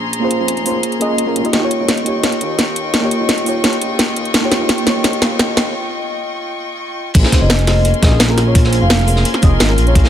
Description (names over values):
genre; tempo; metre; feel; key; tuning
liquid drum and bass; 171 BPM; 4/4; straight; Bb dorian; A4 = 437 Hz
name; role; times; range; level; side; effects
mellow FM electric piano; accompaniment; 0.0-10.1 s; Bb3 to Eb5; -19 LUFS; right 1 dB; chorus, tremolo, digital delay
rich chamber string section; sustained chords; 0.0-10.1 s; Db4 to Db6; -22 LUFS; left 2 dB; none
smooth gliding synth bass; bass; 0.0-10.0 s; Eb1 to Eb2; -18 LUFS; equal; high-pass filter
drum and bass drum kit; drums; 0.1-10.0 s; crash cymbal, hi-hat, snare drum; -17 LUFS; equal; none
crunchy breakbeat drum kit; drums; 7.1-10.1 s; hi-hat, snare drum; -22 LUFS; equal; high-pass filter on hats, high-pass filter on snare, high-pass filter on room
electronic kick drum; drums; 7.1-10.0 s; none; -11 LUFS; equal; none
vibraphone with soft mallets; melody; 7.4-9.1 s; Eb5 to F5; -23 LUFS; left 1 dB; digital delay
room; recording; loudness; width
light reverb; none; -12 LUFS; side -10 dB against mid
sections
0.0-7.1 A section; 7.1-10.1 B section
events
build-up 0.0-7.1; drum fill 1.5-5.7; break 5.7-7.1; drop 7.1-10.1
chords
0.0 Bbm9; 1.5 Eb9; 7.1 Bbm9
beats
| 0.13 0.48 0.83 1.18 | 1.53 1.89 2.24 2.59 | 2.94 3.29 3.64 3.99 | 4.34 4.69 5.04 5.39 | 5.75 6.10 6.45 6.80 | 7.15 7.50 7.85 8.20 | 8.55 8.90 9.25 9.61 | 9.96